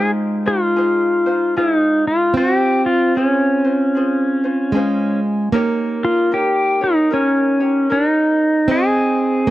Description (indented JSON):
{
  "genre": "Hawaiian",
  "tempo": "76 BPM",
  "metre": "4/4",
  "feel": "swing 62% on 8ths",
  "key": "unclear",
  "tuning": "A4 = 438 Hz",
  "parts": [
    { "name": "pedal steel guitar", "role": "melody", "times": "0.0-9.5 s", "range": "Db4 to Ab4", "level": "-16 LUFS", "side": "left 1 dB", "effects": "none" },
    { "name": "fingerpicked plugged-in steel-string acoustic guitar", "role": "second line", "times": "0.0-9.5 s", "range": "Ab3 to C4", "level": "-21 LUFS", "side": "right 2 dB", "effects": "none" },
    { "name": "ukulele", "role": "accompaniment", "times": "0.0-9.5 s", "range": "C4 to Eb5", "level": "-25 LUFS", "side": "left 2 dB", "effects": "none" }
  ],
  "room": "little or no reverb",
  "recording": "dry, close 1970s-style studio recording",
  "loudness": "-14 LUFS",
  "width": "side -15 dB against mid",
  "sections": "0.0-9.5 A section",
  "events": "none",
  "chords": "0.0 Fm7; 2.3 Dbmaj7; 5.5 Eb7; 8.7 Ab"
}